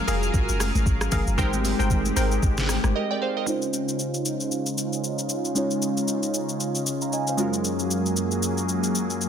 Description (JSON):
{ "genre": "amapiano", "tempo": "115 BPM", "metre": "4/4", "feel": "swing 58% on 16ths", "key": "Db major", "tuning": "A4 = 439 Hz", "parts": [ { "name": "glassy digital keys", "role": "accompaniment", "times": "0.0-9.3 s", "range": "Ab3 to Bb5", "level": "-28 LUFS", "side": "right 3 dB", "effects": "chorus, low-pass filter" }, { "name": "lush unison pad", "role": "sustained chords", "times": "0.0-9.3 s", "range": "Gb2 to F5", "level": "-27 LUFS", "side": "left 1 dB", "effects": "chorus, low-pass filter" }, { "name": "glassy wavetable pluck", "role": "stabs", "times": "0.1-2.3 s", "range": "Ab4 to G5", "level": "-31 LUFS", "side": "left 2 dB", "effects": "chorus, tape echo" }, { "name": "deep log drum bass", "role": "bass", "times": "0.1-2.9 s", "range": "F1 to Ab1", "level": "-25 LUFS", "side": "equal", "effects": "none" }, { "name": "smooth R&B drum kit", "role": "drums", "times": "0.1-9.3 s", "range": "hi-hat, kick drum, rim click, shaker, snare drum", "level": "-28 LUFS", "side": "equal", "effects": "none" }, { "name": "congas", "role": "percussion", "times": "0.6-2.9 s", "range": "none", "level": "-34 LUFS", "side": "left 4 dB", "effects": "none" } ], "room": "light reverb, digital ambience", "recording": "dense, heavily limited modern master", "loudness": "-22 LUFS", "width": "side -8 dB against mid", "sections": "0.0-3.5 A section; 3.5-9.3 B section", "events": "drop 0.0-3.5; break 2.9-3.5", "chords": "0.0 Gbmaj9; 1.4 Abmaj9; 3.5 Dbmaj9; 7.4 Gbmaj9" }